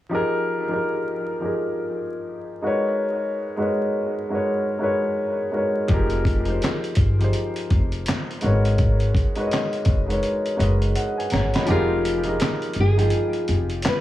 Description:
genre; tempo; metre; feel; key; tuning
lo-fi hip hop; 83 BPM; 4/4; swing 62% on 16ths; unclear; A4 = 440 Hz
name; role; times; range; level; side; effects
warm upright piano; accompaniment; 0.1-14.0 s; F3 to Cb6; -23 LUFS; left 1 dB; cassette tape, low-pass filter, analog delay
upright bass; bass; 5.9-13.8 s; F1 to Ab1; -22 LUFS; equal; none
dusty soul sampler-style drum kit; drums; 5.9-14.0 s; handclaps, hi-hat, kick drum, snare drum; -23 LUFS; equal; none
nylon-string guitar; melody; 11.7-14.0 s; F4 to B4; -26 LUFS; right 1 dB; low-pass filter, analog delay
room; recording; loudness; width
moderate plate reverb, RT60 2.4 s; echo-heavy mix, vinyl crackle, small room ambience; -20 LUFS; side -14 dB against mid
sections
0.1-11.7 A section; 11.7-14.0 B section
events
drum fill 10.2-11.7; kick muted 11.7-14.0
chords
0.1 Fm11; 2.6 Abm11; 5.9 Fm11; 8.4 Abm11; 11.7 Fm11

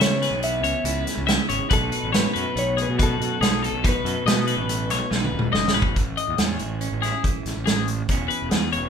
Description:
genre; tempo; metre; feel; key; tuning
math rock and midwest emo; 141 BPM; 5/4; straight; unclear; A4 = 438 Hz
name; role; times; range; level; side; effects
mellow electric guitar; melody; 0.0-5.5 s; A4 to E5; -28 LUFS; left 2 dB; none
twelve-string electric guitar; accompaniment; 0.0-8.9 s; E2 to B4; -30 LUFS; right 3 dB; none
twelve-string electric guitar; arpeggios; 0.0-8.9 s; G#4 to E5; -26 LUFS; left 8 dB; none
fuzz fingered electric bass; bass; 0.0-8.9 s; D#1 to C#3; -27 LUFS; right 1 dB; overdrive
loose indie drum kit; drums; 0.0-8.8 s; hi-hat, kick drum, snare drum, toms; -23 LUFS; right 1 dB; none
room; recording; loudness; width
moderate large studio reverb, RT60 0.8 s; band playing live in one room; -20 LUFS; side -7 dB against mid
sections
0.0-6.0 A section; 6.0-8.9 B section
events
drum fill 5.1-6.0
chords
0.0 C#m7; 1.7 B7; 6.0 Amaj7; 8.1 E6

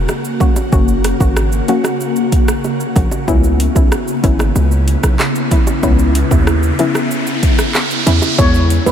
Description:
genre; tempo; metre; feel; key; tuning
dancehall; 94 BPM; 4/4; straight; C# dorian; A4 = 440 Hz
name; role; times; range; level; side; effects
ethereal airy pad; sustained chords; 0.0-8.9 s; B2 to F#4; -19 LUFS; left 1 dB; ensemble chorus, built-in reverb, phaser, sidechain pumping
hard-hitting 808-style bass; bass; 0.0-8.9 s; F#1 to E2; -14 LUFS; equal; none
afro-pop drum kit; drums; 0.1-8.9 s; handclaps, hi-hat, kick drum, rim click, shaker; -16 LUFS; equal; none
bongos; percussion; 0.1-8.4 s; none; -29 LUFS; right 2 dB; none
soft round pluck; accompaniment; 0.4-8.9 s; G#3 to F#4; -20 LUFS; left 2 dB; chorus, sidechain pumping
riser; sound effects; 5.5-8.4 s; none; -23 LUFS; right 2 dB; none
steel pan; melody; 8.4-8.9 s; B4 to C#5; -22 LUFS; left 2 dB; diffuse ambient delay
room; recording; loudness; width
moderate huge ambient reverb, RT60 7.6 s; dreamy mix soaked in reverb; -11 LUFS; side -9 dB against mid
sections
0.0-8.4 A section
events
riser 5.5-8.4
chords
0.0 F#; 3.3 C#m7; 8.4 E

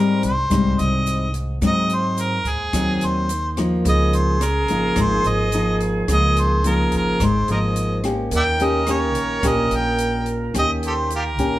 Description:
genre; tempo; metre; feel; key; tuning
bossa nova; 108 BPM; 4/4; straight; unclear; A4 = 443 Hz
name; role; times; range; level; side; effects
warm harmonica; melody; 0.0-11.6 s; F4 to G5; -22 LUFS; equal; plate reverb
nylon-string guitar; accompaniment; 0.0-11.6 s; Ab2 to G4; -22 LUFS; left 2 dB; none
upright bass; bass; 0.0-11.6 s; Ab1 to Ab2; -24 LUFS; equal; none
open jazz drum kit; drums; 0.2-11.5 s; hi-hat, kick drum, rim click; -28 LUFS; equal; none
tube shaker; percussion; 0.2-11.6 s; none; -38 LUFS; right 9 dB; none
reedy silver concert flute; second line; 3.8-11.6 s; G4 to Bb4; -26 LUFS; right 3 dB; none
room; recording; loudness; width
moderate studio reverb, RT60 0.6 s; none; -17 LUFS; side -15 dB against mid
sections
0.0-11.6 A section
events
none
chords
0.0 Abmaj7/C; 1.6 Ab7; 3.9 Db69; 8.3 Eb7

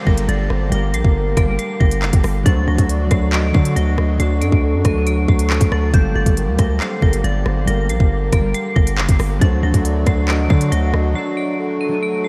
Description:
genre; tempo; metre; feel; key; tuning
hip hop, drill; 138 BPM; 4/4; half-time; G harmonic minor; A4 = 437 Hz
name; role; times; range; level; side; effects
breathy flute-like synth lead; second line; 0.0-12.3 s; A4 to F#5; -29 LUFS; equal; chorus, delay
concert harp; accompaniment; 0.0-12.3 s; F#3 to Bb4; -26 LUFS; equal; none
musette accordion; sustained chords; 0.0-12.3 s; D3 to G4; -31 LUFS; equal; none
downlifter; sound effects; 0.0-2.5 s; none; -47 LUFS; equal; none
dark detuned synth bell; melody; 0.1-12.3 s; G6 to Eb7; -30 LUFS; equal; chorus, tremolo, delay
distorted 808-style bass; bass; 0.1-11.1 s; F#1 to D3; -20 LUFS; equal; distortion
drill drum kit; drums; 0.1-11.0 s; handclaps, hi-hat, kick drum, rim click; -19 LUFS; equal; none
room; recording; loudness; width
moderate cathedral reverb, RT60 6.7 s; dreamy mix soaked in reverb; -17 LUFS; mono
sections
0.0-12.3 A section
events
break 11.2-12.3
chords
0.0 Gmadd9; 2.5 D; 5.9 Gmadd9; 9.4 D

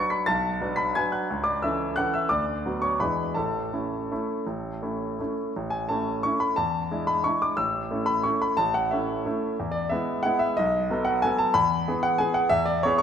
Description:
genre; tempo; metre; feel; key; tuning
classical, piano waltz; 158-195 BPM; 3/4; rubato; A major; A4 = 444 Hz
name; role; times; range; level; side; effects
clear concert grand piano; solo; 0.0-13.0 s; A1 to C#7; -23 LUFS; equal; none
room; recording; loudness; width
moderate concert hall reverb, RT60 1.8 s; minimal, uncompressed stereo recording; -23 LUFS; side -8 dB against mid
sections
0.0-5.6 A section; 5.6-13.0 B section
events
none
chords
0.0 Bm7; 1.3 A/C#; 2.3 Bm/D; 3.0 E7; 3.4 A; 6.6 E7; 7.6 A; 9.6 E; 10.6 B7; 11.6 E

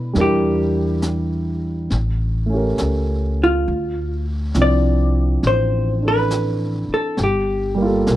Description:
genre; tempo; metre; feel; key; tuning
jazz ballad; 68 BPM; 4/4; swing 67% on 8ths; unclear; A4 = 440 Hz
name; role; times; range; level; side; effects
vintage hollow-body jazz guitar; melody; 0.0-8.2 s; F4 to D5; -20 LUFS; left 1 dB; none
warm grand piano; accompaniment; 0.0-8.2 s; F3 to D5; -22 LUFS; right 2 dB; none
upright bass; bass; 0.0-8.2 s; G1 to B2; -20 LUFS; equal; none
jazz brush drum kit; drums; 0.1-8.2 s; brushed snare drum, hi-hat, snare drum; -29 LUFS; equal; none
room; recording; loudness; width
small room ambience; dry, close 1970s-style studio recording; -17 LUFS; side -14 dB against mid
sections
0.0-8.2 A section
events
none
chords
0.1 Em7b5; 1.9 A7b9; 3.7 Dm9; 7.2 Gm9

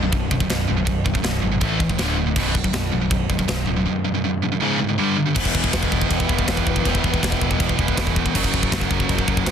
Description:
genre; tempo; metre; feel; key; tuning
heavy metal; 161 BPM; 4/4; straight; B harmonic minor; A4 = 440 Hz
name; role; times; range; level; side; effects
scooped high-gain guitar; riff; 0.0-9.5 s; B1 to A3; -23 LUFS; right 10 dB; distortion
sludgy distorted guitar; riff; 0.0-9.5 s; B1 to A3; -25 LUFS; left 12 dB; overdrive
modern bright picked electric bass; bass; 0.0-9.5 s; B0 to A1; -25 LUFS; equal; none
tight metal drum kit; drums; 0.1-9.5 s; china cymbal, crash cymbal, kick drum, snare drum; -23 LUFS; equal; none
warm studio string section; sustained chords; 5.3-9.5 s; C#3 to B4; -32 LUFS; left 2 dB; none
room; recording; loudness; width
little or no reverb; dense, heavily limited modern master; -18 LUFS; side -8 dB against mid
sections
0.0-5.4 A section; 5.4-9.5 B section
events
none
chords
0.0 B5; 1.6 A5; 2.0 D5; 2.4 B5; 4.6 C#5; 5.0 G5; 5.4 Em; 8.3 F#

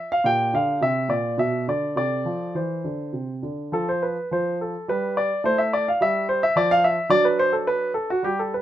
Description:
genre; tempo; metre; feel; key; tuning
classical, baroque-style suite movement for grand piano; 101-110 BPM; 3/4; rubato; F major; A4 = 440 Hz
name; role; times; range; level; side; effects
warm grand piano; solo; 0.0-8.6 s; Bb2 to G5; -20 LUFS; equal; none
room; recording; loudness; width
light reverb; minimal, uncompressed stereo recording; -20 LUFS; side -12 dB against mid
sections
0.0-8.6 A section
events
none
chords
0.3 Gm/Bb; 1.4 Bmadd11; 2.0 F/C; 3.2 Csus2; 3.7 N.C.; 5.5 A5; 6.6 N.C.; 7.1 D/F#

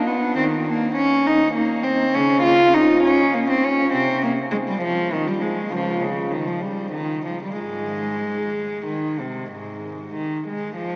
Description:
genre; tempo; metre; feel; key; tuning
classical, baroque-style suite movement for unaccompanied cello; 62-68 BPM (dotted quarters); 12/8; rubato; Ab major; A4 = 440 Hz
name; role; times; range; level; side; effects
warm cello; solo; 0.0-11.0 s; Db2 to F4; -18 LUFS; equal; none
room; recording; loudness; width
wet cathedral reverb, RT60 5.4 s; worn, warbling old tape, cassette tape, warbly pitch drift, small speaker sound; -18 LUFS; side -27 dB against mid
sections
0.0-11.0 A section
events
none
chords
none

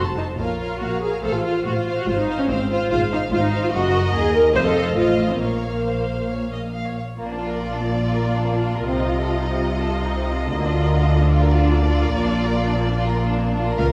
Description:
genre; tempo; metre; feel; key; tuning
quick classical-period movement for string orchestra; 144 BPM; 4/4; rubato; Bb minor, Bb major from 7.2 s; A4 = 439 Hz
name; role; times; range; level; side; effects
rich chamber violin section; melody; 0.0-13.9 s; D5 to A5; -32 LUFS; equal; none
rich chamber violin section; second line; 0.0-13.9 s; Bb3 to F5; -29 LUFS; equal; none
rich studio viola section; accompaniment; 0.0-13.9 s; Bb3 to C5; -26 LUFS; equal; none
rich chamber double bass section; bass; 0.0-13.9 s; F1 to Eb2; -26 LUFS; equal; none
rich symphonic cello section; bass; 0.0-13.9 s; Db2 to D3; -27 LUFS; equal; none
room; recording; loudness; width
wet recital hall reverb, RT60 1.4 s; heard from further back in the room; -21 LUFS; mono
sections
0.0-7.2 A section; 7.2-13.9 B section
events
none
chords
0.4 Bbm; 1.2 F/A; 2.1 Fm/Ab; 3.7 Ebm/Gb; 4.5 F7; 5.4 Bbm; 7.2 Bb; 8.9 F7(no3)/C; 10.5 Bb/D; 12.1 Bb

